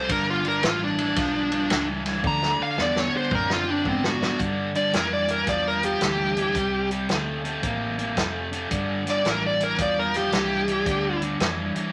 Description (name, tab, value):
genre	electric blues shuffle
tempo	111 BPM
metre	4/4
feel	swing 66% on 8ths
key	unclear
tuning	A4 = 439 Hz
part	dark smooth lead guitar	melody	0.0-11.2 s	C4 to Bb5	-26 LUFS	equal	overdrive
part	overdriven electric guitar	riff	0.0-11.9 s	G2 to C4	-29 LUFS	equal	none
part	vintage muted fingered electric bass	bass	0.0-11.8 s	F1 to Ab2	-36 LUFS	equal	none
part	vintage drum kit	drums	0.1-11.8 s	hi-hat, kick drum, ride cymbal, snare drum, toms	-31 LUFS	equal	none
room	moderate studio reverb, RT60 0.5 s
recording	none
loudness	-24 LUFS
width	mono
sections	0.0-4.4 A section; 4.4-11.9 B section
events	lead electric guitar solo 0.0-4.4; drum fill 2.2-4.4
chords	0.1 G13; 2.2 D13; 4.4 G5; 6.5 Csus2; 8.7 G7sus2